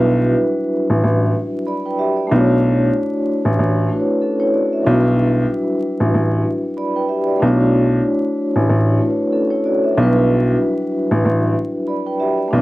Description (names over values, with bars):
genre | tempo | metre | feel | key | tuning
hip hop, boom-bap hip-hop | 94 BPM | 4/4 | swing 56% on 16ths | unclear | A4 = 439 Hz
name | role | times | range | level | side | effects
vibraphone with soft mallets | accompaniment | 0.0-12.6 s | F#3 to B5 | -17 LUFS | equal | cassette tape, high-pass filter, low-pass filter
dark baby grand piano | bass | 0.0-12.6 s | A1 to B1 | -15 LUFS | equal | none
room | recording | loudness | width
light reverb | home recording on cassette, vinyl crackle | -15 LUFS | side -18 dB against mid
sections
0.0-12.6 A section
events
none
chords
0.0 Em7; 2.3 Bm11; 4.9 Em7; 7.4 Bm11; 10.0 Em7